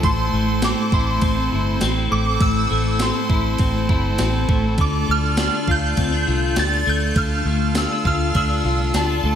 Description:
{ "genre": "dream pop", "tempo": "101 BPM", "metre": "4/4", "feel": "straight", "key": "D minor", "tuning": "A4 = 435 Hz", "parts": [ { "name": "shimmering bell with halo", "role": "melody", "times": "0.0-9.4 s", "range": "A5 to A6", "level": "-24 LUFS", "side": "right 1 dB", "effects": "ensemble chorus, ping-pong delay" }, { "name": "pipe organ, clarinet reed", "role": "sustained chords", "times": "0.0-9.4 s", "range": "E4 to A5", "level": "-28 LUFS", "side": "right 2 dB", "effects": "none" }, { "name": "electric guitar at the edge of break-up", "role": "arpeggios", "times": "0.0-9.4 s", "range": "A2 to F4", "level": "-23 LUFS", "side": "left 3 dB", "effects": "ensemble chorus, ping-pong delay" }, { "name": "vintage muted fingered electric bass", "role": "bass", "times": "0.0-9.4 s", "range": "G1 to D2", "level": "-22 LUFS", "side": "right 1 dB", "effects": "none" }, { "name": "gated 80s digital drum machine", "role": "drums", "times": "0.0-9.1 s", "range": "kick drum, ride cymbal, snare drum, tambourine", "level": "-22 LUFS", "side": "equal", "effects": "gated reverb, gated reverb snare, overdrive" } ], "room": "light reverb", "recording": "none", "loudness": "-17 LUFS", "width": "side -9 dB against mid", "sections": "0.0-9.4 A section", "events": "none", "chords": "0.0 Am; 4.8 Dm" }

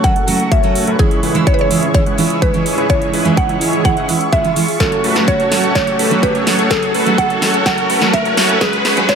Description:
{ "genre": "EDM, festival progressive house", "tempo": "126 BPM", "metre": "4/4", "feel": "straight", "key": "F# minor", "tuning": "A4 = 443 Hz", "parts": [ { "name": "mallet-like synth pluck", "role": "melody", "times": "0.0-9.2 s", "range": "G#4 to F#5", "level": "-19 LUFS", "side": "right 1 dB", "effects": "chorus, phaser, cassette tape, dub echo" }, { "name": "fingerpicked steel-string acoustic guitar", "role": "accompaniment", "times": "0.0-9.2 s", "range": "E3 to F#4", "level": "-19 LUFS", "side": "right 4 dB", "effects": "sidechain pumping" }, { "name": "lush unison pad", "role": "sustained chords", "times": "0.0-9.2 s", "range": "G#4 to C#6", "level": "-23 LUFS", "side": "right 1 dB", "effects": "chorus, phaser, sidechain pumping" }, { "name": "dense compressed supersaw", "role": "riff", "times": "0.0-9.2 s", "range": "G#3 to F#5", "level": "-19 LUFS", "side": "equal", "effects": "sidechain pumping, low-pass filter, dub echo" }, { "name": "fat analog bass", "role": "bass", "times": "0.0-9.2 s", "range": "F#1 to F#2", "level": "-29 LUFS", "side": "left 1 dB", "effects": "none" }, { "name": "big-room dance drum kit", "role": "drums", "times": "0.0-9.2 s", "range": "hi-hat, snare drum", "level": "-20 LUFS", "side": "right 1 dB", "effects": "none" }, { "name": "electronic kick drum", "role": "drums", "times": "0.0-9.2 s", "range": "none", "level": "-17 LUFS", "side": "equal", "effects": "overdrive" }, { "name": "riser", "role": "sound effects", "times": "2.0-9.2 s", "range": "none", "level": "-23 LUFS", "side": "equal", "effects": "none" } ], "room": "moderate concert hall reverb, RT60 2.1 s", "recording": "high-pass filter", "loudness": "-12 LUFS", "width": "side -6 dB against mid", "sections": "0.0-9.2 A section", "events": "build-up 0.0-9.2; filter sweep on supersaw synth 0.0-9.2; filter sweep 0.0-9.2; riser 2.0-9.2; drum fill 4.8-9.2", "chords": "0.0 F#m; 1.0 C#m; 4.8 F#m; 8.6 C#sus4" }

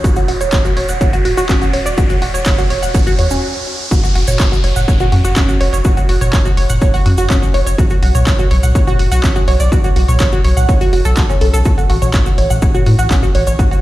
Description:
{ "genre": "melodic techno", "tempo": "124 BPM", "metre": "4/4", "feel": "straight", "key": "F# minor", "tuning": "A4 = 438 Hz", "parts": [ { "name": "analog pluck", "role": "arpeggios", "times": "0.0-13.8 s", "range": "C#4 to F#5", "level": "-18 LUFS", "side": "right 2 dB", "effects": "chorus, phaser, sidechain pumping, digital delay" }, { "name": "round analog bass", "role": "bass", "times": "0.0-13.7 s", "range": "D1 to A2", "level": "-15 LUFS", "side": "equal", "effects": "sidechain pumping" }, { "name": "electronic kick drum", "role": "drums", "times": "0.0-13.7 s", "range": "none", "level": "-14 LUFS", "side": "equal", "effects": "overdrive, small room reverb" }, { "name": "techno drum kit", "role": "drums", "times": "0.0-13.8 s", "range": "handclaps, hi-hat, toms", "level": "-23 LUFS", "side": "equal", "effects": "overdrive, sidechain pumping on hats, high-pass filter on hats, small room reverb, sidechain pumping on toms, high-pass filter on toms, high-pass filter on snare" }, { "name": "cabasa", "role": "percussion", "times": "0.0-13.8 s", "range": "none", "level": "-30 LUFS", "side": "right 3 dB", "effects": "none" }, { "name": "riser and downlifter", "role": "sound effects", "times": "0.0-7.8 s", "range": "none", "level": "-26 LUFS", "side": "equal", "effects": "none" } ], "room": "digital ambience", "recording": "played on a big sound system in a bare room, stone room reverb", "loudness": "-11 LUFS", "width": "side -16 dB against mid", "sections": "0.0-3.9 A section; 3.9-13.8 B section", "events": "build-up 0.0-3.9; riser 0.0-3.9; filter sweep on synth arpeggio sound 0.0-3.9; stop 3.4-3.9; drop 3.9-13.8", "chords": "0.0 Dmaj9 (rootless); 3.9 F#5; 7.8 Bsus2; 11.7 A" }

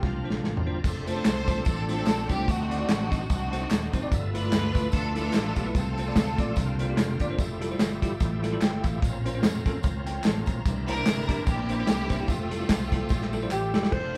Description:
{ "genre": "uptempo gospel", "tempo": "147 BPM", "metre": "4/4", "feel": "swing 56% on 8ths", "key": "F major", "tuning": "A4 = 440 Hz", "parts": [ { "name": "breathy alto saxophone", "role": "melody", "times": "0.0-0.7, 13.5-14.2 s", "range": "F4 to C5", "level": "-34 LUFS", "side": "equal", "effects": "none" }, { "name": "bell-like tine electric piano", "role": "accompaniment", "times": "0.0-14.2 s", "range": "G2 to Bb5", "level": "-35 LUFS", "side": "equal", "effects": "none" }, { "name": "bright tonewheel organ", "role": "sustained chords", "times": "0.0-14.2 s", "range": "D3 to E5", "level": "-40 LUFS", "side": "equal", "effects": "slow rotary speaker, overdrive, chorus vibrato" }, { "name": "dark studio string section", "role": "sustained chords", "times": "0.0-0.8, 13.9-14.2 s", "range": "F3 to F5", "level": "-48 LUFS", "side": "equal", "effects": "none" }, { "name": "fingered electric bass", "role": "bass", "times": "0.0-14.2 s", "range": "Eb1 to F2", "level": "-35 LUFS", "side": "equal", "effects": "none" }, { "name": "modern studio drum kit", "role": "drums", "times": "0.0-14.0 s", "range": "crash cymbal, hi-hat, kick drum, snare drum, toms", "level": "-29 LUFS", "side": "equal", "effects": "none" }, { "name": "tambourine and handclaps", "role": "percussion", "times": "0.9-13.8 s", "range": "none", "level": "-44 LUFS", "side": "equal", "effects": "none" }, { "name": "clear studio string section", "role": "melody", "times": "1.1-6.9, 10.9-13.7 s", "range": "A3 to C5", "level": "-35 LUFS", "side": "equal", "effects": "none" } ], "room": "moderate large studio reverb, RT60 1.0 s", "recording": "band playing live in one room", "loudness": "-27 LUFS", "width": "mono", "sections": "0.8-13.9 A section", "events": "drum fill 0.0-0.8, 13.1-13.9", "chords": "0.0 C9sus4; 0.8 F6; 2.5 D7b9; 4.1 G13; 5.8 F/C; 6.6 C9sus4; 7.4 Fmaj9; 9.0 Bbmadd9; 10.7 C9; 12.3 Fmaj9" }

